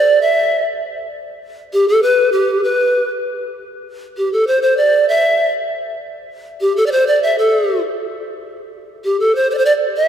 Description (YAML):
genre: andean folk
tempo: 98 BPM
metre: 2/4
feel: straight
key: A minor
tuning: A4 = 440 Hz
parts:
  - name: breathy bright polished pan flute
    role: solo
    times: 0.0-10.1 s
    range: G4 to E5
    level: -14 LUFS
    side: equal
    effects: none
room: wet church reverb, RT60 3.5 s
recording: recorded in a church or concert hall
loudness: -13 LUFS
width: side -9 dB against mid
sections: 0.0-8.1 A section; 8.1-10.1 A section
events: none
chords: none